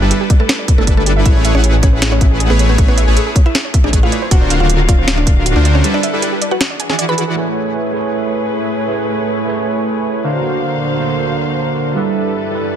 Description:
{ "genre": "future bass", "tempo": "157 BPM", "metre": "4/4", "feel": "half-time", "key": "A major", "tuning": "A4 = 440 Hz", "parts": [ { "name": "rich chamber string section", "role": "sustained chords", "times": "0.0-12.8 s", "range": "D2 to E#5", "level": "-26 LUFS", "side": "left 3 dB", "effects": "sidechain pumping" }, { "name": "soft round pluck", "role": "arpeggios", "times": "0.0-7.3 s", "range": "F#4 to G#5", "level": "-26 LUFS", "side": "right 3 dB", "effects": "chorus, sidechain pumping, ping-pong delay" }, { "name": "soft supersaw", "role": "riff", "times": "0.0-12.8 s", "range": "D3 to G#5", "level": "-18 LUFS", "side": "right 1 dB", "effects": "cassette tape, sidechain pumping, low-pass filter, ping-pong delay" }, { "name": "wide detuned saw bass", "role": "bass", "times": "0.0-5.8 s", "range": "D1 to D2", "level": "-14 LUFS", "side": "equal", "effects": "chorus, sidechain pumping" }, { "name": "trap drum kit", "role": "drums", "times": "0.1-7.3 s", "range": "hi-hat, snare drum", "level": "-18 LUFS", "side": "right 2 dB", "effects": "low-pass filter on hats, low-pass filter on snare" }, { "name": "electronic kick drum", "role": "drums", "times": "0.3-5.3 s", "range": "none", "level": "-11 LUFS", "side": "equal", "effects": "none" }, { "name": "mallet-like synth pluck", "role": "melody", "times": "0.4-7.3 s", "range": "A3 to B5", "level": "-22 LUFS", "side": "equal", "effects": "chorus, cassette tape, sidechain pumping, tape echo" }, { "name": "overdriven tine electric piano", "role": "accompaniment", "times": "7.4-12.8 s", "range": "D3 to E#5", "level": "-21 LUFS", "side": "right 5 dB", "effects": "sidechain pumping, ping-pong delay" } ], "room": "light reverb, digital ambience", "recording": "dense, heavily limited modern master", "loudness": "-12 LUFS", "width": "side -9 dB against mid", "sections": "0.0-7.4 A section; 7.4-12.8 B section", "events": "drop 0.0-7.4; break 5.8-7.4", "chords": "0.0 G69; 1.3 Amaj9; 4.1 D7alt; 5.8 G69; 6.6 E9; 7.4 Amaj9; 10.2 D7alt; 12.0 G69" }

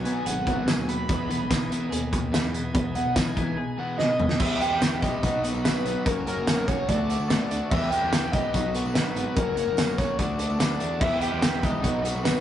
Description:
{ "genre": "indie rock", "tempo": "145 BPM", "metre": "4/4", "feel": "straight", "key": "unclear", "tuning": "A4 = 440 Hz", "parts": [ { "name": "bright tonewheel organ", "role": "sustained chords", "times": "0.0-12.4 s", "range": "B3 to B5", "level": "-41 LUFS", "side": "equal", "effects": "none" }, { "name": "overdriven electric guitar", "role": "riff", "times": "0.0-12.4 s", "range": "E2 to G4", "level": "-31 LUFS", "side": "left 3 dB", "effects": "none" }, { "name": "twelve-string electric guitar", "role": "riff", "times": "0.0-12.4 s", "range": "E3 to G#4", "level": "-34 LUFS", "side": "right 2 dB", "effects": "none" }, { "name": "fuzz picked electric bass", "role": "bass", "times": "0.0-12.3 s", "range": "F#1 to E3", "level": "-32 LUFS", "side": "equal", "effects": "overdrive" }, { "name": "overdriven synth lead", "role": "melody", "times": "0.1-12.4 s", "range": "A#4 to B5", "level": "-29 LUFS", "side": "equal", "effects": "distortion, chorus, phaser" }, { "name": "loose indie drum kit", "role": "drums", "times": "0.1-12.4 s", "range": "crash cymbal, hi-hat, kick drum, snare drum, tambourine, toms", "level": "-26 LUFS", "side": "equal", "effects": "none" }, { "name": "tambourine", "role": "percussion", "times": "0.7-12.4 s", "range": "none", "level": "-50 LUFS", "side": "right 6 dB", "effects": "none" }, { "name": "bright trumpet", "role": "second line", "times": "10.2-12.4 s", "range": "B3 to G4", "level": "-40 LUFS", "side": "right 2 dB", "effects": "none" } ], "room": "moderate small room reverb, RT60 0.5 s", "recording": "rough rehearsal-room recording, tube saturation, nothing above 10.7 kHz", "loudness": "-22 LUFS", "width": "side -11 dB against mid", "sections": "0.0-4.4 A section; 4.4-12.4 B section", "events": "analog synth lead solo 0.0-4.4; drum fill 4.0-4.4", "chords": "0.0 B6; 1.1 Emaj7; 4.4 Em; 5.2 B; 6.1 F#; 6.9 D; 7.7 Em; 8.5 B; 9.4 F#; 10.2 D; 11.0 Em; 11.8 B" }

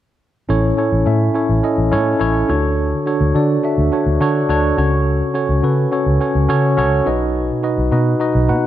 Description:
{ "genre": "pop", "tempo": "105 BPM", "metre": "4/4", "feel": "straight", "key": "unclear", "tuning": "A4 = 440 Hz", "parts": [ { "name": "tine electric piano", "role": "accompaniment", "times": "0.5-8.7 s", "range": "A2 to F#5", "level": "-16 LUFS", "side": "equal", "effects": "medium stereo tremolo" }, { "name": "vintage muted fingered electric bass", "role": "bass", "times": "0.5-8.7 s", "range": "A1 to D3", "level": "-17 LUFS", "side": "equal", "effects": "none" } ], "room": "moderate lush hall reverb, RT60 2.0 s", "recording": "dark, warm production", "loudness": "-14 LUFS", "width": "side -12 dB against mid", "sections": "0.5-8.7 A section", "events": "none", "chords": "0.5 A; 2.5 Dmaj7; 4.8 F#m/C#; 7.1 B" }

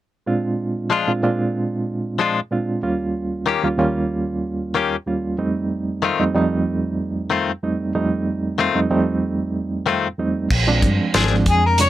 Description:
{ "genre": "straight-eighth soul blues", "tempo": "94 BPM", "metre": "4/4", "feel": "straight", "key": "unclear", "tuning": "A4 = 440 Hz", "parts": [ { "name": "barky reed electric piano", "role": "accompaniment", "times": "0.3-11.9 s", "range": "Eb2 to F4", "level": "-20 LUFS", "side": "right 2 dB", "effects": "overdrive, fast tremolo" }, { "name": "direct-recorded clean electric guitar", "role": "stabs", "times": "0.9-11.4 s", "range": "Eb3 to Ab4", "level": "-18 LUFS", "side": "left 6 dB", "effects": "none" }, { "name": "vintage muted fingered electric bass", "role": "bass", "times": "10.5-11.9 s", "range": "Ab1 to G2", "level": "-19 LUFS", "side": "equal", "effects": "none" }, { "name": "warm soul drum kit", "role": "drums", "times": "10.5-11.9 s", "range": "crash cymbal, hi-hat, kick drum, snare drum", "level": "-20 LUFS", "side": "right 1 dB", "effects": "none" }, { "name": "warm harmonica", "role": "melody", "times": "11.5-11.9 s", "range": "Ab4 to Db5", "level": "-16 LUFS", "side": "left 3 dB", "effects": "overdrive" } ], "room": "light reverb", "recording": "none", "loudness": "-18 LUFS", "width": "side -13 dB against mid", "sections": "0.3-10.5 A section; 10.5-11.9 B section", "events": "none", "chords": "0.3 Bb7; 2.8 Eb7; 5.4 F7; 10.5 Bb9" }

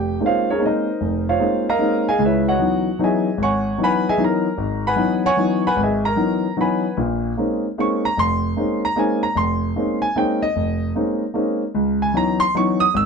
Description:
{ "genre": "jazz", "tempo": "151 BPM", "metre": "3/4", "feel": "swing 65% on 8ths", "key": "unclear", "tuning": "A4 = 440 Hz", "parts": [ { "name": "warm grand piano", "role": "solo", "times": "0.0-13.1 s", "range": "F1 to Fb6", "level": "-17 LUFS", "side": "equal", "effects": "none" } ], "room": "light reverb", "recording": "dark, warm production", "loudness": "-17 LUFS", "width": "side -5 dB against mid", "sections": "0.0-13.1 A section", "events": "none", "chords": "0.0 Bbm11; 2.2 Dbm11; 7.0 Bbm11; 11.7 Dbm11" }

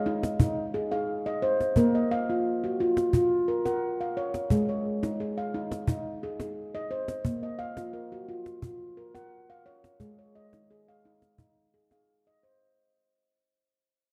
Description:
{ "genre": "world meditative, meditative tuned percussion", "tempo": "87 BPM", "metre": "4/4", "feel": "straight", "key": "unclear", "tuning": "A4 = 445 Hz", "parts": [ { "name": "handpan", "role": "arpeggios", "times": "0.0-12.8 s", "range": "Ab3 to Gb5", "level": "-30 LUFS", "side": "equal", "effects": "none" }, { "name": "cajon", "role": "percussion", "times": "0.2-12.1 s", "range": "none", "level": "-30 LUFS", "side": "equal", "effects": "none" } ], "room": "wet echo chamber reverb, RT60 2.3 s", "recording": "dark, warm production", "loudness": "-29 LUFS", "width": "mono", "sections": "0.0-12.8 A section", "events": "fade-out 0.0-12.8", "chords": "0.0 Ab; 1.8 Bbm; 4.5 Ab; 7.2 Bbm; 10.0 Ab5" }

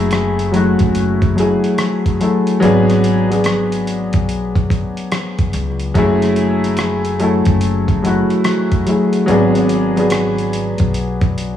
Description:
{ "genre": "lo-fi hip hop", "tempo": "72 BPM", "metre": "4/4", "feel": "swing 64% on 16ths", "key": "F# minor", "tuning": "A4 = 440 Hz", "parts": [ { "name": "warm upright piano", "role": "accompaniment", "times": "0.0-11.6 s", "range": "F#3 to A4", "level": "-15 LUFS", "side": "left 1 dB", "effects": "cassette tape, low-pass filter" }, { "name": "upright bass", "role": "bass", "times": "0.0-11.5 s", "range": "F#1 to C#2", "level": "-20 LUFS", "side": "equal", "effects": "none" }, { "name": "dusty soul sampler-style drum kit", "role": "drums", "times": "0.1-11.6 s", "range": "hi-hat, kick drum, rim click", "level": "-19 LUFS", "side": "equal", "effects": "none" } ], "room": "light reverb, small room ambience", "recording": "vinyl crackle", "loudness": "-13 LUFS", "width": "side -10 dB against mid", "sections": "0.0-11.6 A section", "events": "none", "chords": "0.0 F#m9; 2.6 G#m7b5; 6.0 F#m9; 9.3 G#m7b5" }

